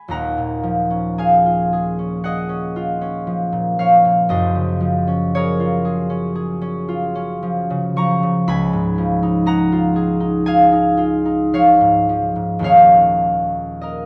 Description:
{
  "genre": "classical, solo harp piece",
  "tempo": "57 BPM",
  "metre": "4/4",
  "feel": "uneven beats, rubato",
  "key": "Eb dorian",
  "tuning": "A4 = 442 Hz",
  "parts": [
    { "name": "concert harp", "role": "solo", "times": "0.0-14.1 s", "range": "Eb1 to Db6", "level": "-17 LUFS", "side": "equal", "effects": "none" }
  ],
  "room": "moderate recital hall reverb, RT60 1.6 s",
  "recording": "dark, warm production",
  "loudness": "-17 LUFS",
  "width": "mono",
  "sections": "0.1-14.1 A section",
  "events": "none",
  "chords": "0.1 Ebm11; 4.3 Gbmaj9; 8.5 C#9; 12.7 D#7sus4"
}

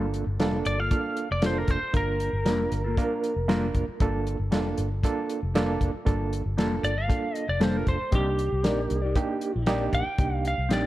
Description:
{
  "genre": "straight-eighth soul blues",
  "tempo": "116 BPM",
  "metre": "4/4",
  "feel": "straight",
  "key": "G minor",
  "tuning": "A4 = 439 Hz",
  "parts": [
    { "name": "overdriven reed electric piano", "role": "accompaniment", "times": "0.0-10.9 s", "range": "Bb3 to Bb4", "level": "-30 LUFS", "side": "right 4 dB", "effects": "fast tremolo" },
    { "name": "mellow electric guitar", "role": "stabs", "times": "0.0-10.9 s", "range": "G3 to D5", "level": "-33 LUFS", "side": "left 3 dB", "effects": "phaser, analog delay" },
    { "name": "vintage muted fingered electric bass", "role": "bass", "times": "0.0-10.9 s", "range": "F1 to C2", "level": "-29 LUFS", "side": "equal", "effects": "none" },
    { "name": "warm soul drum kit", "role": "drums", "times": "0.1-10.8 s", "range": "hi-hat, kick drum, snare drum", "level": "-27 LUFS", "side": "left 1 dB", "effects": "none" },
    { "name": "lightly driven lead guitar", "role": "melody", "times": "0.7-3.5, 6.8-10.9 s", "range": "G4 to G5", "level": "-30 LUFS", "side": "equal", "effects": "none" }
  ],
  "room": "light reverb, studio reverb",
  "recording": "none",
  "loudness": "-24 LUFS",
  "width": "side -15 dB against mid",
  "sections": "0.0-10.9 A section",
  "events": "none",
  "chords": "0.0 Gm9; 8.1 Cm9"
}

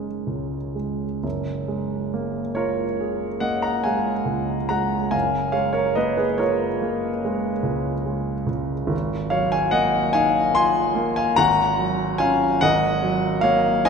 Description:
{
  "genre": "classical, impressionist solo piano",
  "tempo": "47 BPM (dotted quarters)",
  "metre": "9/8",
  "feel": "uneven beats, rubato",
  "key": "F# major",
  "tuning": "A4 = 440 Hz",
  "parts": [
    { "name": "warm concert grand piano", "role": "solo", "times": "0.0-13.9 s", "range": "F#1 to B#5", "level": "-20 LUFS", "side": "equal", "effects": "none" }
  ],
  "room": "wet cathedral reverb, RT60 4.7 s",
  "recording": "in a vast, echoing space",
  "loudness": "-20 LUFS",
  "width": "side -6 dB against mid",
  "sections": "0.0-1.2 A section; 1.2-13.9 A section",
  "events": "none",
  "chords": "0.0 F#69; 1.2 F#maj9; 5.1 A#m7/F#; 8.9 G#sus2; 11.4 F#maj7/G#; 12.6 G#7sus2"
}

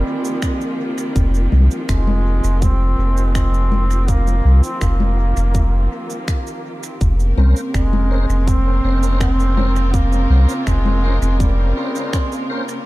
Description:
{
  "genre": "ambient dub",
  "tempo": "82 BPM",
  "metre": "4/4",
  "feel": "straight",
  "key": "F minor",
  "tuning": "A4 = 441 Hz",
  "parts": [
    { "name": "trombone with straight mute", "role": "melody", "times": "0.0-12.5 s", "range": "G3 to C4", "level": "-27 LUFS", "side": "right 1 dB", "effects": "analog delay" },
    { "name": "rich chamber string section", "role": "sustained chords", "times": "0.0-12.9 s", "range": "Db3 to Bb4", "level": "-27 LUFS", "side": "equal", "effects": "none" },
    { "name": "vibraphone with medium mallets", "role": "arpeggios", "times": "0.0-12.9 s", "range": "C4 to C6", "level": "-27 LUFS", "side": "right 2 dB", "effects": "analog delay" },
    { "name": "warm sub bass", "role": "bass", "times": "0.0-11.7 s", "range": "F1 to C2", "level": "-15 LUFS", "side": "equal", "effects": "none" },
    { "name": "electronic shaker, finger snaps and congas", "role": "drums", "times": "0.2-12.8 s", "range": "none", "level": "-28 LUFS", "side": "left 4 dB", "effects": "dub echo" },
    { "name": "electronic kick drum", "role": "drums", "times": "0.4-12.3 s", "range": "none", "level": "-19 LUFS", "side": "equal", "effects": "none" },
    { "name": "tonewheel organ", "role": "stabs", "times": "7.4-12.6 s", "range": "Db4 to C5", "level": "-29 LUFS", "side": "left 1 dB", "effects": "chorus vibrato, slow rotary speaker, dub echo" }
  ],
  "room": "small room ambience",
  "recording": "echo-heavy mix",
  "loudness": "-14 LUFS",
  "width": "side -18 dB against mid",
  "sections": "0.0-12.9 A section",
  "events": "none",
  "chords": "0.0 F9sus4; 7.0 Bbmadd9/F"
}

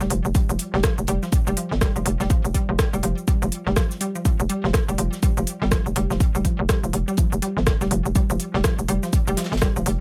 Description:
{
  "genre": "minimal techno",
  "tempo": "123 BPM",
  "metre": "4/4",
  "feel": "swing 60% on 16ths",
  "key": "unclear",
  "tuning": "A4 = 440 Hz",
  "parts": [
    { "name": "resonant blip pluck", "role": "riff", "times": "0.0-9.8 s", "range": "F3 to G3", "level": "-30 LUFS", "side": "equal", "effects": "chorus, cassette tape, sidechain pumping, digital delay" },
    { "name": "hollow knocking FM bass", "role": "bass", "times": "0.0-10.0 s", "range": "F1 to G1", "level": "-26 LUFS", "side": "equal", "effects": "sidechain pumping" },
    { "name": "minimal click drum kit", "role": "drums", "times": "0.0-10.0 s", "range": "hi-hat, rim click, shaker", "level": "-30 LUFS", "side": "equal", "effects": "overdrive" },
    { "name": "modern studio drum kit", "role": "drums", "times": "0.0-10.0 s", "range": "hi-hat, snare drum", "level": "-40 LUFS", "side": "equal", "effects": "high-pass filter on hats, high-pass filter on snare, high-pass filter on room" },
    { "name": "electronic kick drum", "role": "drums", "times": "0.3-9.7 s", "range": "none", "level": "-23 LUFS", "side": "equal", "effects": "none" }
  ],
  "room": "little or no reverb",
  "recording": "none",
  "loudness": "-22 LUFS",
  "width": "mono",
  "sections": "0.0-10.0 A section",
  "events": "none",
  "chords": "0.0 F5"
}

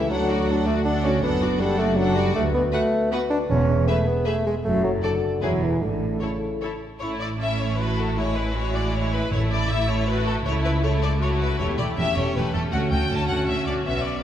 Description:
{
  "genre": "quick classical-period movement for symphony orchestra",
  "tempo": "157 BPM",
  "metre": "3/4",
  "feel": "rubato",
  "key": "A major",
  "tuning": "A4 = 440 Hz",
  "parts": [
    { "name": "rich chamber violin section", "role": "melody", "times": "0.0-14.2 s", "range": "A4 to A5", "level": "-30 LUFS", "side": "left 4 dB", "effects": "none" },
    { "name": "rich chamber violin section", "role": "second line", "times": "0.0-14.2 s", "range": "G#3 to B4", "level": "-33 LUFS", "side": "left 3 dB", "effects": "none" },
    { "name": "dark bassoon", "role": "accompaniment", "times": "0.0-6.6 s", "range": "C#3 to D4", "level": "-24 LUFS", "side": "equal", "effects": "none" },
    { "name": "warm studio viola section", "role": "accompaniment", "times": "0.0-14.2 s", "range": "C#4 to A4", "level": "-31 LUFS", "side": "right 1 dB", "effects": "none" },
    { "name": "dark French horn section", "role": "sustained chords", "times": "0.0-14.2 s", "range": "G#3 to B4", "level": "-30 LUFS", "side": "left 4 dB", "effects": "none" },
    { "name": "rich chamber cello section", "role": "bass", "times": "0.0-14.2 s", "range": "C#2 to B2", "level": "-28 LUFS", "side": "right 2 dB", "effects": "none" },
    { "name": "rich chamber double bass section", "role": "bass", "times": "0.0-14.2 s", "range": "E1 to D2", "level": "-26 LUFS", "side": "right 2 dB", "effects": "none" },
    { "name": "timpani", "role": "percussion", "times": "9.3-9.8 s", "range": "A2", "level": "-30 LUFS", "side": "equal", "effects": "none" }
  ],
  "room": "wet scoring stage reverb, RT60 1.6 s",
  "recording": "recorded in a church or concert hall",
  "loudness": "-20 LUFS",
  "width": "side -10 dB against mid",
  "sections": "0.0-7.0 A section; 7.0-14.2 B section",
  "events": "none",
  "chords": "0.1 D; 1.2 D/F#; 2.4 Bm7/D; 3.5 E; 4.6 D/F#; 5.4 E; 5.8 A; 8.2 E/A; 9.3 A5; 10.5 A/C#; 11.6 A7/E; 12.7 D"
}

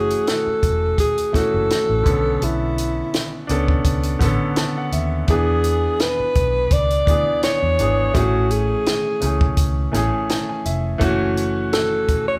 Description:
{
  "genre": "lush 1970s-style soul",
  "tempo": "84 BPM",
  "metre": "4/4",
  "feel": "swing 54% on 16ths",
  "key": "A major",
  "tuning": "A4 = 440 Hz",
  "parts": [
    { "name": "mellow alto saxophone", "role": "melody", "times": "0.0-12.4 s", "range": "E4 to D5", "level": "-22 LUFS", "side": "equal", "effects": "none" },
    { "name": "clear baby grand piano", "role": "accompaniment", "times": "0.0-12.4 s", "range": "D3 to A5", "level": "-26 LUFS", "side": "equal", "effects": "none" },
    { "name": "vintage muted fingered electric bass", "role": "bass", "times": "0.0-12.4 s", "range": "E1 to E2", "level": "-25 LUFS", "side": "equal", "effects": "none" },
    { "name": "compact cocktail drum kit", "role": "drums", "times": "0.1-12.3 s", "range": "hi-hat, kick drum, snare drum", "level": "-24 LUFS", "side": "equal", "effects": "none" }
  ],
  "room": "moderate large studio reverb, RT60 1.4 s",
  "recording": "band playing live in one room",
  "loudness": "-19 LUFS",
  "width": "mono",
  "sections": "0.0-12.4 A section",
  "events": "grand piano fill 4.2-5.3, 9.6-11.0",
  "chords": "0.0 F#m7; 2.1 Bm9; 5.3 E7; 8.1 Amaj7; 11.0 F#m7"
}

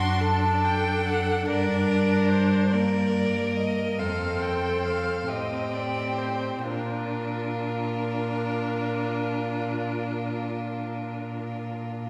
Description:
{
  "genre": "classical, slow romantic movement for string quartet",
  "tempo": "42-48 BPM (dotted quarters)",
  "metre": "12/8",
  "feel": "rubato",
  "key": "Bb major",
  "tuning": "A4 = 441 Hz",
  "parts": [
    { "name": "rich violin", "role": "melody", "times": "0.0-11.8 s", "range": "Bb4 to C6", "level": "-33 LUFS", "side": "equal", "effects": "none" },
    { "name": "clear violin", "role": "second line", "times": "0.0-12.1 s", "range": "F4 to Bb4", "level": "-33 LUFS", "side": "equal", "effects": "none" },
    { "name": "rich viola", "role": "accompaniment", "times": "0.0-12.1 s", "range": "Bb3 to D4", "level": "-34 LUFS", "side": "equal", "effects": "none" },
    { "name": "rich cello", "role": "bass", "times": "0.0-12.1 s", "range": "F2 to Bb2", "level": "-30 LUFS", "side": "equal", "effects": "none" }
  ],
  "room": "wet concert hall reverb, RT60 2.3 s",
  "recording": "heard from further back in the room",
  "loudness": "-26 LUFS",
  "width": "mono",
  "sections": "0.0-12.1 A section",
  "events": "none",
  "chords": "0.0 D/F#; 1.5 Gm; 4.0 F; 6.7 Bb"
}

